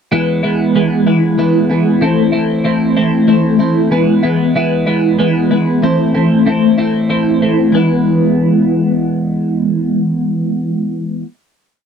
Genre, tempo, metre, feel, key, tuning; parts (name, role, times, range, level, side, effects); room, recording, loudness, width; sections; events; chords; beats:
rock; 63 BPM (dotted quarters); 6/8; straight; A4 = 439 Hz
twelve-string electric guitar; solo; 0.1-11.3 s; E3 to E4; -11 LUFS; equal; phaser
light reverb; dry, close 1970s-style studio recording; -11 LUFS; side -7 dB against mid
0.1-7.7 groove; 7.7-11.6 final chord
0.1 E; 2.0 Am; 3.9 E; 5.8 Am; 7.7 E
| 0.12 1.07 | 2.01 2.96 | 3.91 4.86 | 5.82 6.77 | 7.73 8.69 | 9.66 10.62